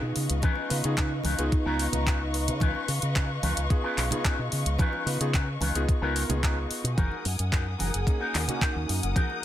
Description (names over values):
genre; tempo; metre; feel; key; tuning
nu-disco, nu disco; 110 BPM; 4/4; straight; Db mixolydian; A4 = 440 Hz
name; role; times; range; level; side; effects
vibraphone with medium mallets; melody; 0.0-2.4, 7.9-8.8 s; Eb4 to Ab4; -36 LUFS; right 1 dB; ping-pong delay
warm electric grand piano; accompaniment; 0.0-9.4 s; Bb3 to Bb5; -35 LUFS; equal; sidechain pumping, ping-pong delay
dark studio string section; sustained chords; 0.0-9.4 s; Bb4 to Eb6; -35 LUFS; left 2 dB; sidechain pumping
electric guitar with an envelope filter; riff; 0.0-9.4 s; Db4 to Cb5; -34 LUFS; left 2 dB; wide subtle chorus, ping-pong delay
fingered electric bass with an envelope filter; bass; 0.0-9.1 s; Gb1 to Db3; -29 LUFS; equal; none
pop drum kit; drums; 0.2-9.3 s; handclaps, hi-hat; -32 LUFS; equal; overdrive
electronic kick drum; drums; 0.4-9.3 s; none; -25 LUFS; equal; none
congas and bongos; percussion; 0.4-9.4 s; none; -35 LUFS; right 3 dB; none
room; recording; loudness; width
light reverb; none; -24 LUFS; side -12 dB against mid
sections
0.0-9.4 A section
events
none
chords
0.0 Db9; 7.0 Gb69